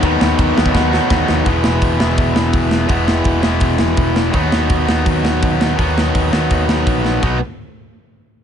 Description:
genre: punk rock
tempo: 166 BPM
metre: 4/4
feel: straight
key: B major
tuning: A4 = 440 Hz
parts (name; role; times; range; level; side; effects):
- crunchy overdriven guitar; riff; 0.0-1.5 s; D#3 to B4; -19 LUFS; left 4 dB; none
- distorted electric guitar; riff; 0.0-7.4 s; B2 to E4; -19 LUFS; left 12 dB; overdrive
- tight distorted guitar; riff; 0.0-7.4 s; E2 to B3; -20 LUFS; right 13 dB; distortion
- overdriven picked electric bass; bass; 0.0-7.4 s; E1 to D#2; -19 LUFS; equal; none
- tight metal drum kit; drums; 0.0-7.3 s; crash cymbal, hi-hat, kick drum, ride cymbal, snare drum; -18 LUFS; equal; none
room: light reverb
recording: nothing above 10.5 kHz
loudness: -13 LUFS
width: side -8 dB against mid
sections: 0.0-1.5 A section; 1.5-7.2 B section; 7.2-8.4 C section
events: drum fill 0.7-1.5, 7.0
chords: 0.0 B/D#; 1.5 E; 4.3 B/D#; 7.2 B5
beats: | 0.03 0.38 0.74 1.10 | 1.46 1.81 2.17 2.53 | 2.89 3.25 3.62 3.98 | 4.34 4.70 5.06 5.42 | 5.78 6.14 6.50 6.87 | 7.23

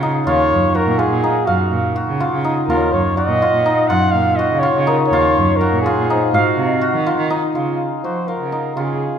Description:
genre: contemporary instrumental, chamber music in an uneven meter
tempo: 247 BPM (eighths)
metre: 5/8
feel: straight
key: Gb lydian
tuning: A4 = 441 Hz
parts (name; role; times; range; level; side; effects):
- cimbalom; arpeggios; 0.0-9.2 s; Eb4 to F5; -18 LUFS; equal; none
- rich cello; bass; 0.0-9.0 s; Eb2 to F3; -20 LUFS; right 2 dB; none
- warm flugelhorn; melody; 0.3-9.2 s; F4 to Gb5; -19 LUFS; equal; none
- large celesta; texture; 0.3-8.7 s; Bb4 to Bb5; -26 LUFS; left 7 dB; none
room: wet recital hall reverb, RT60 1.5 s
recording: none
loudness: -14 LUFS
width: side -8 dB against mid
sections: 0.0-7.6 A section; 7.6-9.2 B section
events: none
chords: 0.3 Ebm7; 1.5 Gbmaj7; 2.7 Ebm7; 3.9 Gbmaj7; 5.1 Ebm7; 6.3 Ab7 (rootless); 7.6 Dbadd9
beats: 0.02 | 0.26 0.50 0.75 0.99 1.23 | 1.48 1.72 1.96 2.21 2.45 | 2.69 2.93 3.18 3.42 3.66 | 3.90 4.15 4.39 4.63 4.88 | 5.12 5.36 5.61 5.85 6.09 | 6.33 6.58 6.82 7.07 7.31 | 7.55 7.79 8.04 8.28 8.53 | 8.77 9.02

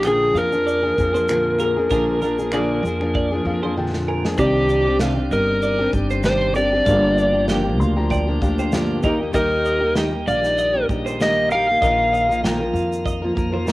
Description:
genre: acoustic pop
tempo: 97 BPM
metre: 4/4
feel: swing 55% on 16ths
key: C minor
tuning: A4 = 440 Hz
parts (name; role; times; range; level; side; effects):
- overdriven slide guitar; melody; 0.0-12.4 s; G4 to F5; -19 LUFS; equal; cassette tape, plate reverb
- felt-muted upright piano; accompaniment; 0.0-13.7 s; Bb3 to C6; -31 LUFS; left 2 dB; none
- fingerpicked plugged-in steel-string acoustic guitar; accompaniment; 0.0-13.7 s; G2 to Bb4; -23 LUFS; left 1 dB; cassette tape, plate reverb
- twelve-string electric guitar; arpeggios; 0.0-13.7 s; Bb4 to G5; -29 LUFS; right 4 dB; harmonic tremolo, cassette tape, plate reverb
- upright bass; bass; 0.0-13.7 s; G1 to F2; -25 LUFS; equal; none
- natural country drum kit; drums; 0.0-13.7 s; finger snaps, kick drum, shaker, snare drum; -26 LUFS; equal; none
- tonewheel organ; sustained chords; 4.4-13.7 s; Eb3 to D5; -30 LUFS; right 1 dB; overdrive, slow rotary speaker, cassette tape, plate reverb
room: moderate booth ambience, RT60 0.2 s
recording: home recording on cassette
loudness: -17 LUFS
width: side -18 dB against mid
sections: 0.0-4.4 A section; 4.4-13.7 B section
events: drum fill 3.1-4.4; felt piano fill 3.1-4.4, 7.5-9.3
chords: 0.0 Bb7; 4.4 Cmadd9; 6.9 Gm7; 9.0 Eb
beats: 0.05 0.67 1.29 | 1.91 2.53 3.15 3.77 | 4.38 5.00 5.62 6.24 | 6.86 7.48 8.10 8.72 | 9.34 9.96 10.58 11.20 | 11.81 12.43 13.05 13.67

